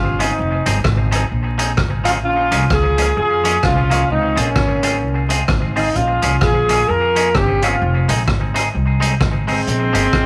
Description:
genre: ska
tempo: 129 BPM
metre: 4/4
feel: swing 59% on 8ths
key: Bb dorian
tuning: A4 = 444 Hz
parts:
  - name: warm horn section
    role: melody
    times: 0.0-10.3 s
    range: Ab3 to Bb4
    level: -20 LUFS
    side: equal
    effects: none
  - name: upright bass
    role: bass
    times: 0.0-10.3 s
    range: F1 to F2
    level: -22 LUFS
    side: equal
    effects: none
  - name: clean electric guitar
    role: accompaniment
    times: 0.2-10.2 s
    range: F3 to Ab4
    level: -25 LUFS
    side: equal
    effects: tape echo
  - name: raw garage drum kit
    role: drums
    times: 0.2-10.3 s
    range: hi-hat, kick drum, rim click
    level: -23 LUFS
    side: equal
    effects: tape echo
room: moderate plate reverb, RT60 1.2 s, studio ambience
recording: vinyl crackle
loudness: -17 LUFS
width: mono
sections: 0.0-10.3 A section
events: none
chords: 0.4 Fm7; 2.2 Bbm7; 4.1 Dbmaj7; 6.0 Bbm7; 7.8 Fm7; 9.7 Bbm7

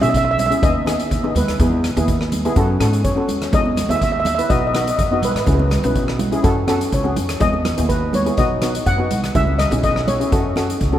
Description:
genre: calypso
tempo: 124 BPM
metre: 4/4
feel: straight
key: E major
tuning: A4 = 439 Hz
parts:
  - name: steel pan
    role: melody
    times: 0.0-10.8 s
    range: B4 to F#5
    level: -22 LUFS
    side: equal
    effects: none
  - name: steel pan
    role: accompaniment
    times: 0.0-11.0 s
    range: B3 to B4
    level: -22 LUFS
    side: left 1 dB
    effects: none
  - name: upright bass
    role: bass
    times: 0.0-11.0 s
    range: B1 to G#2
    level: -21 LUFS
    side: equal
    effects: none
  - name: soft-mallet drum kit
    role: drums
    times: 0.0-10.9 s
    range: hi-hat, kick drum, rim click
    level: -22 LUFS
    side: equal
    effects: none
  - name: congas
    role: percussion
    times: 0.0-11.0 s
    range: none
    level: -26 LUFS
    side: right 3 dB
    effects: none
room: moderate cathedral reverb, RT60 6.5 s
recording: in a vast, echoing space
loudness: -15 LUFS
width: side -11 dB against mid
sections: 0.0-11.0 A section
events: none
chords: 0.0 C#m7; 0.6 G#m/D#; 1.6 Emaj7; 2.6 F#m7; 3.5 Emaj7; 4.5 B; 5.5 C#m7; 6.4 F#m; 7.4 Emaj7; 8.4 B; 9.4 C#m7; 10.3 F#m

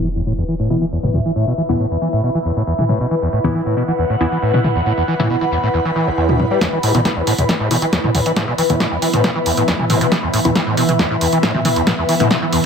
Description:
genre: driving peak-time techno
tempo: 137 BPM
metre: 4/4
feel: straight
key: unclear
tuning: A4 = 439 Hz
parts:
  - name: screaming distorted acid line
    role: riff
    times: 0.0-12.6 s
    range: E1 to G3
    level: -18 LUFS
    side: equal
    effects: distortion, wide subtle chorus, sidechain pumping, tape echo
  - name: wavetable chord stab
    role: stabs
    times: 0.0-12.4 s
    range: E3 to E4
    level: -24 LUFS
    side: left 2 dB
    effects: sidechain pumping, tape echo
  - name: raw garage drum kit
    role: drums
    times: 0.0-6.6 s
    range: hi-hat, snare drum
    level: -42 LUFS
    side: right 2 dB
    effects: none
  - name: impact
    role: sound effects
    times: 0.0-1.4 s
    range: none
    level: -28 LUFS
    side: equal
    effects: none
  - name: airy breathy pad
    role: texture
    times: 0.3-12.7 s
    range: E4 to B5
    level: -20 LUFS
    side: left 1 dB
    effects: chorus, phaser, sidechain pumping
  - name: punchy analog drum machine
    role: drums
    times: 1.0-12.6 s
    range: hi-hat, snare drum, toms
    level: -19 LUFS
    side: equal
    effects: low-pass filter on hats, low-pass filter on toms, low-pass filter on snare, analog delay
  - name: deep dark ambient pad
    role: drone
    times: 8.2-12.7 s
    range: E3 to B3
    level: -23 LUFS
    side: right 2 dB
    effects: chorus, built-in reverb, sidechain pumping
  - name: electronic kick drum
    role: drums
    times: 6.6-12.4 s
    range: none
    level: -24 LUFS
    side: equal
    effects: high-pass filter on kick, high-pass filter on room
room: moderate plate reverb, RT60 1.4 s, digital ambience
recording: echo-heavy mix, low-pass filter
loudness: -14 LUFS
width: side -6 dB against mid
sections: 0.0-6.6 A section; 6.6-12.7 B section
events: impact 0.0-1.4; filter sweep on drum 0.0-6.6; filter sweep 0.0-6.6; build-up 6.6-12.7; drum fill 6.6-12.7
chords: 0.0 E5

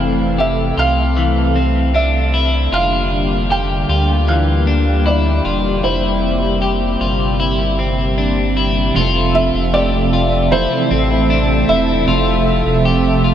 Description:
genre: dream pop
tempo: 77 BPM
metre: 4/4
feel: straight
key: F major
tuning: A4 = 439 Hz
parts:
  - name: felt-muted upright piano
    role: melody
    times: 0.0-13.3 s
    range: C5 to G5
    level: -21 LUFS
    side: right 1 dB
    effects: tape echo
  - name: warm analog pad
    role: sustained chords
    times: 0.0-13.3 s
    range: C3 to E5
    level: -19 LUFS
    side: equal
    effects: chorus
  - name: electric guitar at the edge of break-up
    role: arpeggios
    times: 0.0-13.3 s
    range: E3 to G4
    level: -19 LUFS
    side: left 3 dB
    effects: lush chorus, tape echo
  - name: warm sub bass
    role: bass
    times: 0.0-13.3 s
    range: E1 to D2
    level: -18 LUFS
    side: equal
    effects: none
  - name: electric guitar at the edge of break-up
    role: accompaniment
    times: 8.9-13.3 s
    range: F2 to A4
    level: -19 LUFS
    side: right 4 dB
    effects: tremolo, lush chorus
room: wet huge ambient reverb, RT60 7.4 s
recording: dreamy mix soaked in reverb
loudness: -13 LUFS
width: side -10 dB against mid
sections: 0.0-9.0 A section; 9.0-13.3 B section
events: none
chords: 0.0 Fmaj7; 2.7 Gm7/F; 5.8 C7/F; 9.0 Fmaj7

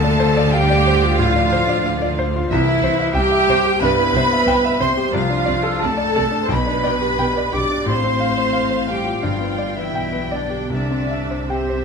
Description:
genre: classical, romantic movement for piano and orchestra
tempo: 76-94 BPM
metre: 4/4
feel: rubato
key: C major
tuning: A4 = 440 Hz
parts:
  - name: clear concert grand piano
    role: melody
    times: 0.0-11.8 s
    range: B1 to A5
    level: -21 LUFS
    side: left 3 dB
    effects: none
  - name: rich studio violin section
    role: melody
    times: 0.0-11.8 s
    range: D5 to G5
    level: -32 LUFS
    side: left 2 dB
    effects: none
  - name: bright concert flute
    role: second line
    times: 0.0-11.8 s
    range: C5 to D6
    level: -26 LUFS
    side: left 2 dB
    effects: none
  - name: clear studio violin section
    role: second line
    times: 0.0-11.8 s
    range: C5 to D6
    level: -26 LUFS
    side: left 1 dB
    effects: none
  - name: clear studio viola section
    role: accompaniment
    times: 0.0-11.8 s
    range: C4 to D5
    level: -21 LUFS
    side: right 3 dB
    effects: none
  - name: mellow French horn section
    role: sustained chords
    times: 0.0-11.8 s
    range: C3 to D4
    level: -27 LUFS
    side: left 4 dB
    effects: none
  - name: clear studio cello section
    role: bass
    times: 0.0-11.8 s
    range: G2 to D3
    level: -28 LUFS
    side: right 3 dB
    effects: none
  - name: warm studio double bass section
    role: bass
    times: 0.0-11.8 s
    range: G1 to D2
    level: -26 LUFS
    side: right 4 dB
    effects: none
  - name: timpani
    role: percussion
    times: 9.2-10.3 s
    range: G2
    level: -31 LUFS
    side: left 1 dB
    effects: none
  - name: warm clarinet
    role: second line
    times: 11.5-11.8 s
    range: G4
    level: -24 LUFS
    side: left 1 dB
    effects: none
room: moderate recital hall reverb, RT60 1.4 s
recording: close, detailed microphones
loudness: -16 LUFS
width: side -5 dB against mid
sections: 0.0-11.8 A section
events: none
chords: 0.0 Dm7; 2.5 C; 5.1 Dm7/C; 6.5 G/B; 7.9 F/A; 9.2 G; 10.7 C

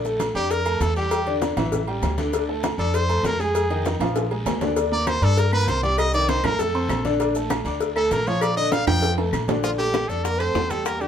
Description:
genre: Afro-Cuban jazz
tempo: 197 BPM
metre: 4/4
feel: straight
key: Bb major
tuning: A4 = 439 Hz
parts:
  - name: warm baby grand piano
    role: accompaniment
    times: 0.0-11.1 s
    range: D3 to D6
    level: -25 LUFS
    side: equal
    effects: none
  - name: upright bass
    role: bass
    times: 0.0-11.1 s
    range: A1 to G2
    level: -26 LUFS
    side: equal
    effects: none
  - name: congas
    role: percussion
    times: 0.0-11.1 s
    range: none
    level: -30 LUFS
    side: left 1 dB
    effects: none
  - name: maracas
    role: percussion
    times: 0.0-11.1 s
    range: none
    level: -43 LUFS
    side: left 4 dB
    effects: none
  - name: agogo bells and timbales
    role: percussion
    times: 0.2-11.0 s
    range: none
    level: -30 LUFS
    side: right 4 dB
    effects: none
  - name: cowbell and bongos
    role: percussion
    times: 0.2-11.0 s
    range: none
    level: -30 LUFS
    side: left 6 dB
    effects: none
  - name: guiro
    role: percussion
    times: 0.2-11.1 s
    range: none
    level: -40 LUFS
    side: left 2 dB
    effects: none
  - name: brilliant trumpet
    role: melody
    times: 0.4-11.1 s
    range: F4 to G5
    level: -24 LUFS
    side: equal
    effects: none
  - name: claves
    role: percussion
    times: 5.1-11.0 s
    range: none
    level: -37 LUFS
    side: left 5 dB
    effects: none
  - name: growling tenor saxophone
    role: second line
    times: 9.6-11.1 s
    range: F3 to C4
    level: -32 LUFS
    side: right 4 dB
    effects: none
room: moderate studio reverb, RT60 0.7 s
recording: band playing live in one room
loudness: -20 LUFS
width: side -8 dB against mid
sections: 0.0-9.6 A section; 9.6-11.1 B section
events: trumpet solo 0.0-9.6; drum fill 4.0-4.8, 8.9-9.6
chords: 0.0 Bbmaj7; 1.1 A7sus4; 2.3 Dm7; 3.6 Fm7; 4.2 Bb7; 4.8 Ebmaj7; 6.0 Cm; 6.6 F; 7.2 Bbmaj7; 9.6 Bbmaj9

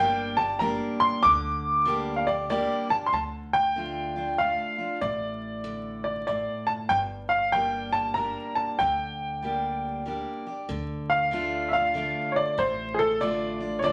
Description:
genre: honky-tonk and classic country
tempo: 95 BPM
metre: 3/4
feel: swing 64% on 8ths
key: D minor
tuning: A4 = 440 Hz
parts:
  - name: bright upright piano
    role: melody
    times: 0.0-13.9 s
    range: G#4 to D6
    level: -27 LUFS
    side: equal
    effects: none
  - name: picked steel-string acoustic guitar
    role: accompaniment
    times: 0.0-13.9 s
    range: G2 to G4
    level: -35 LUFS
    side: equal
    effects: none
  - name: upright bass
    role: bass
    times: 0.0-13.9 s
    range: G1 to D2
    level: -43 LUFS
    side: equal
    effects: none
room: wet studio reverb, RT60 0.7 s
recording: vinyl crackle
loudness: -27 LUFS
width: mono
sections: 0.0-3.1 A section; 3.1-10.7 B section; 10.7-13.9 C section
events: upright piano solo 10.7-13.9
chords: 0.0 Gm; 3.1 Dm; 6.9 Gm; 10.7 Dm

